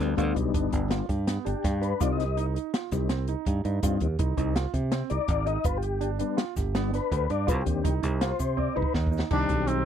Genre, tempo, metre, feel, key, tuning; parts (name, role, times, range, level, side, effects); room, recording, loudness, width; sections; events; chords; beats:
progressive instrumental, band music in an uneven meter; 164 BPM; 5/4; straight; C harmonic minor; A4 = 445 Hz
mellow tonewheel organ; accompaniment; 0.0-9.8 s; Eb3 to Eb5; -30 LUFS; left 15 dB; chorus vibrato
warm concert grand piano; arpeggios; 0.0-9.8 s; B3 to G4; -33 LUFS; right 20 dB
fingered electric bass; bass; 0.0-9.8 s; G1 to C3; -28 LUFS; right 1 dB
open jazz drum kit; drums; 0.0-9.8 s; crash cymbal, hi-hat, kick drum, snare drum; -30 LUFS; equal
egg shaker; percussion; 2.0-9.2 s; -45 LUFS; left 18 dB
growling trumpet; melody; 9.3-9.8 s; C4 to D4; -27 LUFS; equal
little or no reverb; dry, close 1970s-style studio recording; -25 LUFS; side -9 dB against mid
0.0-9.3 A section
tonewheel organ solo 0.0-9.3; drum fill 8.6-9.3
0.0 G; 2.0 Cm; 5.7 G; 7.5 Cmadd9; 9.3 Cm
| 0.18 0.55 0.91 1.27 1.64 | 2.00 2.37 2.73 3.10 3.46 | 3.83 4.19 4.56 4.92 5.29 | 5.65 6.02 6.38 6.75 7.11 | 7.48 7.84 8.21 8.58 8.94 | 9.31 9.68